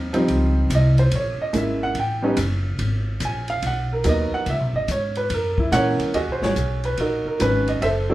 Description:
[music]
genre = jazz piano trio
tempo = 143 BPM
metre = 4/4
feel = swing 66% on 8ths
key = G# minor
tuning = A4 = 439 Hz
[part]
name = warm upright piano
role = melody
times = 0.0-8.1 s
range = D#3 to G#5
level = -22 LUFS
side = right 1 dB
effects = plate reverb
[part]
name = upright bass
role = bass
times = 0.0-8.1 s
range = F#1 to A#2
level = -23 LUFS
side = equal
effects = none
[part]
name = open jazz drum kit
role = drums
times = 0.1-7.9 s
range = hi-hat, kick drum, ride cymbal, snare drum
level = -30 LUFS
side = left 1 dB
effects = none
[sound]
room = wet club reverb, RT60 0.5 s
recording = heard from further back in the room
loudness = -19 LUFS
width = side -16 dB against mid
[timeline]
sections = 0.0-6.1 A section; 6.1-8.1 B section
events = upright piano solo 0.0-6.1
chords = 0.0 C#maj9#11; 1.1 A#m7b5; 2.0 A7(no3); 2.8 G#m9; 4.5 C#5; 5.3 F#7; 6.1 B6

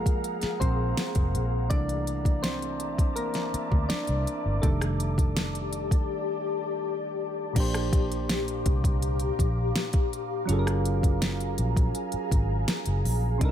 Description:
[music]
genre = contemporary R&B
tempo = 82 BPM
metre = 4/4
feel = straight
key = Bb major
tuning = A4 = 442 Hz
[part]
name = soft electric-piano-like synth keys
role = accompaniment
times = 0.0-13.5 s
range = Bb2 to D5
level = -32 LUFS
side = right 1 dB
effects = chorus
[part]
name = ethereal airy pad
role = sustained chords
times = 0.0-13.5 s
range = Bb3 to D6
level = -33 LUFS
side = left 3 dB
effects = ensemble chorus, built-in reverb
[part]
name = vintage muted fingered electric bass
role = bass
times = 0.0-13.5 s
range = F1 to D2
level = -28 LUFS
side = equal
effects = none
[part]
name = smooth R&B drum kit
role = drums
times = 0.1-13.5 s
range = crash cymbal, hi-hat, kick drum, rim click, snare drum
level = -26 LUFS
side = equal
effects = none
[sound]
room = little or no reverb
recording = none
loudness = -24 LUFS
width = side -10 dB against mid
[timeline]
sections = 0.0-7.6 A section; 7.6-13.5 B section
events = synth keys solo 0.0-7.6; break 6.1-7.6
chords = 0.0 Gbmaj9; 1.7 C13; 4.6 F13; 7.6 Bb6; 10.5 Gbmaj9

